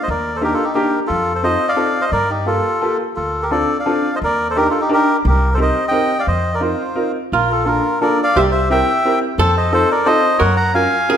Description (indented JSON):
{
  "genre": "musette waltz",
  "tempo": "175 BPM",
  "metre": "3/4",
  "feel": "swing 54% on 8ths, rubato",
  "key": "unclear",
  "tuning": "A4 = 440 Hz",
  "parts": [
    { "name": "melodica", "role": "melody", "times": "0.0-11.2 s", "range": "Eb4 to Bb5", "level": "-17 LUFS", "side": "equal", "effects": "none" },
    { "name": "upright bass", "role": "bass", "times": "0.1-10.9 s", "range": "Bb1 to G2", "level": "-20 LUFS", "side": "equal", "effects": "none" },
    { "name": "clear upright piano", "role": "accompaniment", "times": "0.4-11.2 s", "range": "Bb3 to Bb4", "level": "-20 LUFS", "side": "equal", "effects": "none" },
    { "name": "archtop guitar, miked and amplified", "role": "second line", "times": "7.3-11.2 s", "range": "F4 to Bb4", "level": "-21 LUFS", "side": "right 3 dB", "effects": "none" }
  ],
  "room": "moderate scoring stage reverb, RT60 1.6 s",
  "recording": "minimal, uncompressed stereo recording",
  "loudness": "-14 LUFS",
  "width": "side -8 dB against mid",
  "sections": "0.0-11.2 A section",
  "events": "none",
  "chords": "0.1 Ebmaj7; 1.1 F7; 2.1 Gm9; 3.2 Dm7; 4.2 Ebmaj7; 5.2 Cm7; 6.3 F7sus4; 7.3 Bbmaj7; 8.4 C7; 9.4 F7; 10.4 Gbmaj7"
}